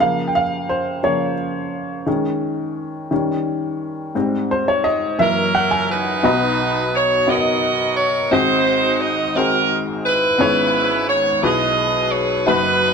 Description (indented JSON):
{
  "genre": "gospel",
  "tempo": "58 BPM (dotted quarters)",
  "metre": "6/8",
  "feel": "straight",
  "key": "B major from 6.2 s",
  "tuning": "A4 = 445 Hz",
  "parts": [
    { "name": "warm upright piano", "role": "accompaniment", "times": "0.0-12.9 s", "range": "F#1 to A#5", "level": "-19 LUFS", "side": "left 1 dB", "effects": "none" },
    { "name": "edgy saxophone section", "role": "melody", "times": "5.2-12.9 s", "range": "Db4 to D#5", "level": "-17 LUFS", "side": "right 2 dB", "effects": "none" }
  ],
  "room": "moderate echo chamber reverb, RT60 2.2 s",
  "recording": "none",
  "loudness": "-16 LUFS",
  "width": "side -6 dB against mid",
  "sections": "0.0-6.2 A section; 6.2-12.9 B section",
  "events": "upright piano solo 0.0-6.2",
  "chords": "0.0 Db6; 2.1 Eb7sus4; 3.1 Eb7; 4.2 Abmaj7; 5.2 Gb7; 6.2 Bmaj7; 8.3 G#7; 10.4 C#m7/G#; 11.4 E/B"
}